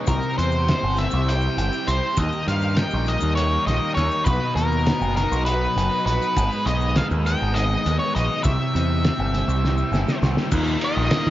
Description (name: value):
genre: psychedelic rock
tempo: 201 BPM (eighths)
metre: 7/8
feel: straight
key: unclear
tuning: A4 = 440 Hz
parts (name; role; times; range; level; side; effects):
- overdriven combo organ; sustained chords; 0.0-11.3 s; E3 to D#5; -32 LUFS; right 3 dB; none
- thick fuzz guitar; riff; 0.0-11.3 s; Eb2 to G4; -27 LUFS; left 2 dB; distortion, phaser, dub echo
- octave-fuzz lead guitar; melody; 0.1-11.3 s; Bb4 to G5; -25 LUFS; equal; distortion, dub echo
- growling picked electric bass; bass; 0.1-11.3 s; F#1 to Eb3; -23 LUFS; equal; overdrive
- cloth-damped thuddy drum kit; drums; 0.1-11.3 s; crash cymbal, hi-hat, kick drum, ride cymbal, snare drum; -25 LUFS; equal; none
- maracas; percussion; 0.1-10.7 s; none; -41 LUFS; left 10 dB; none
room: light reverb, studio reverb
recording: echo-heavy mix, nothing above 7.5 kHz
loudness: -19 LUFS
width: side -14 dB against mid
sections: 0.0-10.5 A section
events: drum fill 9.6-10.5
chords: 0.1 C; 2.2 Eb; 4.3 B; 6.4 Abm; 8.4 C; 10.5 Ebsus2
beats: | 0.08 0.38 0.68 0.98 1.28 1.58 1.88 | 2.18 2.48 2.77 3.07 3.37 3.67 3.97 | 4.27 4.57 4.87 5.17 5.47 5.77 6.07 | 6.36 6.66 6.96 7.26 7.56 7.86 8.15 | 8.45 8.75 9.04 9.34 9.64 9.94 10.23 | 10.53 10.83 11.12